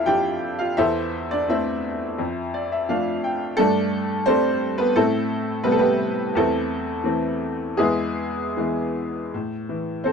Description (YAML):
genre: classical, lyrical solo piano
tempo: 85 BPM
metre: 4/4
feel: rubato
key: A minor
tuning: A4 = 440 Hz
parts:
  - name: bright upright piano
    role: solo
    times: 0.0-10.1 s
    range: E2 to G5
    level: -20 LUFS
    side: equal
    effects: none
room: moderate studio reverb, RT60 0.5 s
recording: dark, warm production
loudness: -20 LUFS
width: side -6 dB against mid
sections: 0.0-9.3 A section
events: upright piano fill 2.2-3.6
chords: 0.0 Dmadd9/F; 0.8 Am/E; 2.2 Dm/F; 3.6 Gsus2; 5.0 Am7; 6.4 Am/E; 7.8 E; 9.3 Am